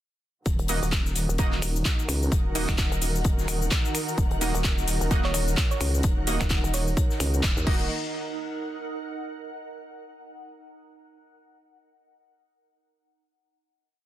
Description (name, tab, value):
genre	bass house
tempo	129 BPM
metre	4/4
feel	swing 58% on 16ths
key	Eb minor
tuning	A4 = 440 Hz
part	warm symphonic string section	sustained chords	0.5-7.9 s	Eb3 to Bb4	-36 LUFS	left 1 dB	sidechain pumping, low-pass filter
part	vowel-sweep wobble bass	bass	0.5-7.9 s	Eb1 to Eb2	-27 LUFS	equal	chorus, tube saturation, sidechain pumping
part	electronic kick drum	drums	0.5-7.8 s	none	-25 LUFS	equal	studio reverb
part	house drum kit	drums	0.5-7.8 s	crash cymbal, finger snaps, handclaps, hi-hat, shaker	-30 LUFS	left 1 dB	studio reverb
part	modern studio drum kit	drums	0.5-7.6 s	hi-hat, snare drum	-41 LUFS	left 4 dB	none
part	ethereal airy pad	texture	1.2-9.7 s	Eb4 to Gb5	-36 LUFS	right 2 dB	ensemble chorus, built-in reverb, phaser, sidechain pumping
part	orchestra-hit-like synth stab	stabs	0.7-7.8 s	Bb3 to Eb5	-33 LUFS	right 3 dB	built-in reverb, sidechain pumping, digital delay
part	thumb-piano-like synth pluck	melody	5.2-7.1 s	Db5	-36 LUFS	right 1 dB	chorus, vintage 12-bit sampler grit, digital delay
room	small room ambience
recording	dense, heavily limited modern master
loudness	-23 LUFS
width	side -13 dB against mid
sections	0.5-7.9 drop; 7.9-9.8 final note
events	drop 0.5-7.9; band accent 7.4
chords	0.5 Ebm